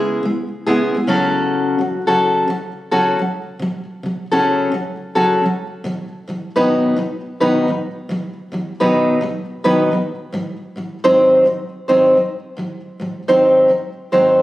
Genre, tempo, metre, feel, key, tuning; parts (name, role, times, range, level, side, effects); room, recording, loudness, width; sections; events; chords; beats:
pop; 107 BPM; 4/4; swing 55% on 16ths; B mixolydian; A4 = 440 Hz
fingerpicked steel-string acoustic guitar; solo; 0.0-14.4 s; G#2 to B#4; -15 LUFS; equal
light reverb; recorded on a phone in the room, studio reverb; -15 LUFS; side -16 dB against mid
0.0-14.4 A section
0.0 C#m7; 1.1 F#m/C#; 5.8 B; 10.3 G#7
0.24 0.80 | 1.36 1.92 2.48 3.04 | 3.60 4.16 4.72 5.29 | 5.85 6.41 6.97 7.53 | 8.09 8.65 9.21 9.77 | 10.33 10.89 11.45 12.01 | 12.57 13.13 13.69 14.25